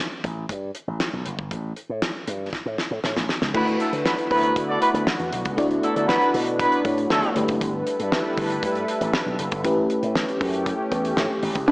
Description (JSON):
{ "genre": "early-eighties boogie funk", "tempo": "118 BPM", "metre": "4/4", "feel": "straight", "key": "D major", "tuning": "A4 = 439 Hz", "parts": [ { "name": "slap bass with an envelope filter", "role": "bass", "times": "0.2-11.7 s", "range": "F#1 to D3", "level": "-28 LUFS", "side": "equal", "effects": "none" }, { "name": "damped 70s drum kit", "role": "drums", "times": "0.2-11.7 s", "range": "crash cymbal, hi-hat, kick drum, snare drum", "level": "-26 LUFS", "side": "equal", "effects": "none" }, { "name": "warm horn section", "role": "second line", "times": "3.5-7.3, 11.7 s", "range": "F#3 to D5", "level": "-22 LUFS", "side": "equal", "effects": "slapback echo" }, { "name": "FM electric piano with soft pad layer", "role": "accompaniment", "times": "3.5-11.7 s", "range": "A3 to D5", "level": "-25 LUFS", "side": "left 1 dB", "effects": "chorus, slapback echo" }, { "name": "lush unison pad", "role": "sustained chords", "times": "3.5-11.7 s", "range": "D3 to B4", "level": "-28 LUFS", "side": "equal", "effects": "chorus" }, { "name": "mellow electric guitar", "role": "riff", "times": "11.7 s", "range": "D4", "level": "-13 LUFS", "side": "equal", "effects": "lush chorus" } ], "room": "wet recital hall reverb, RT60 1.4 s, small room ambience", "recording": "big arena sound, small speaker sound", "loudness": "-21 LUFS", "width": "side -24 dB against mid", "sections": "0.0-3.5 A section; 3.5-11.7 B section", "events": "drum fill 2.5-3.5", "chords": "0.0 Gadd9; 1.5 N.C.; 3.5 D69; 7.4 G69; 9.6 A9" }